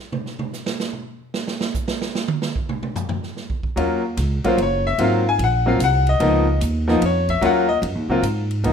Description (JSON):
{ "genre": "jazz piano trio", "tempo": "148 BPM", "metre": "3/4", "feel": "swing 66% on 8ths", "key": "unclear", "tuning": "A4 = 441 Hz", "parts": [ { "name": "swinging big-band drum kit", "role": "drums", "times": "0.1-8.7 s", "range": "hi-hat, kick drum, ride cymbal, snare drum, toms", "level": "-27 LUFS", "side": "right 3 dB", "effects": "none" }, { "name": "clear baby grand piano", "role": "melody", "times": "3.8-8.7 s", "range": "F3 to Ab5", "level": "-18 LUFS", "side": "left 2 dB", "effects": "none" }, { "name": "upright bass", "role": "bass", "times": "3.8-8.7 s", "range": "Gb1 to Ab2", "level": "-21 LUFS", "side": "right 1 dB", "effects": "none" } ], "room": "moderate large studio reverb, RT60 1.1 s", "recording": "minimal, uncompressed stereo recording", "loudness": "-18 LUFS", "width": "side -7 dB against mid", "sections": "0.0-8.6 A section", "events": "grand piano solo 0.0-8.6; drum solo 0.0-3.8", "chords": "0.0 N.C.; 3.8 Ebm7; 5.0 Ab13; 6.2 Db13; 7.4 Ebm7; 8.2 N.C." }